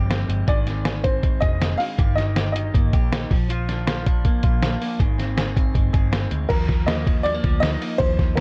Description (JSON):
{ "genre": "jangly indie pop", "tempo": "160 BPM", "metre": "4/4", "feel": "straight", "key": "unclear", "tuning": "A4 = 442 Hz", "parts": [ { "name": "electric guitar through a small old amp", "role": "arpeggios", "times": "0.0-8.4 s", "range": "Eb3 to Ab4", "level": "-31 LUFS", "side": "equal", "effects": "vibrato effect, tape echo" }, { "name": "vintage muted fingered electric bass", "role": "bass", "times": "0.0-8.4 s", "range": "F1 to Eb2", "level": "-27 LUFS", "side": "equal", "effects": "none" }, { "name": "lo-fi sampler-style drum kit", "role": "drums", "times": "0.1-8.4 s", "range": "crash cymbal, hi-hat, kick drum, ride cymbal, snare drum", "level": "-23 LUFS", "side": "equal", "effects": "none" }, { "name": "dark upright piano", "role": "melody", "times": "0.5-3.2, 6.5-8.4 s", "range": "Bb4 to F5", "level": "-28 LUFS", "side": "equal", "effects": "none" } ], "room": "light reverb", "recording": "cassette tape", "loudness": "-21 LUFS", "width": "mono", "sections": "0.0-6.5 A section; 6.5-8.4 B section", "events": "none", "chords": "0.5 Ab; 2.0 Eb/G; 3.3 Bb; 5.0 Ab; 6.5 Ebsus2" }